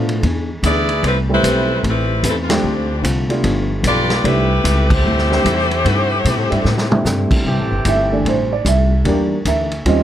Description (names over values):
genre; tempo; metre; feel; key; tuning
jazz, big band swing; 150 BPM; 4/4; swing 64% on 8ths; C major; A4 = 440 Hz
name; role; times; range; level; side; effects
hollow-body jazz guitar; accompaniment; 0.0-10.0 s; G2 to C5; -24 LUFS; left 4 dB; none
warm baby grand piano; accompaniment; 0.0-10.0 s; E3 to E5; -19 LUFS; right 2 dB; none
upright bass; bass; 0.0-10.0 s; G1 to B2; -18 LUFS; equal; none
vintage drum kit; drums; 0.1-10.0 s; crash cymbal, hi-hat, kick drum, ride cymbal, snare drum, toms; -22 LUFS; equal; none
bright saxophone section; melody; 0.7-7.1 s; F3 to D5; -18 LUFS; left 1 dB; none
mellow trombone section; sustained chords; 7.5-9.2 s; E3 to G4; -25 LUFS; right 2 dB; none
room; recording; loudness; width
light reverb; close, detailed microphones; -14 LUFS; side -11 dB against mid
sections
0.0-7.5 A section; 7.5-10.0 B section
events
band accent 2.4, 4.8; drum fill 6.7-7.1; grand piano solo 7.5-10.0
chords
0.2 E7; 1.0 Am9; 2.6 Dm7; 3.4 G7; 4.2 C6; 9.1 Em7b5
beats
0.23 0.64 | 1.04 1.44 1.84 2.24 | 2.64 3.04 3.44 3.85 | 4.25 4.65 5.05 5.45 | 5.85 6.25 6.65 7.05 | 7.45 7.85 8.26 8.66 | 9.06 9.46 9.86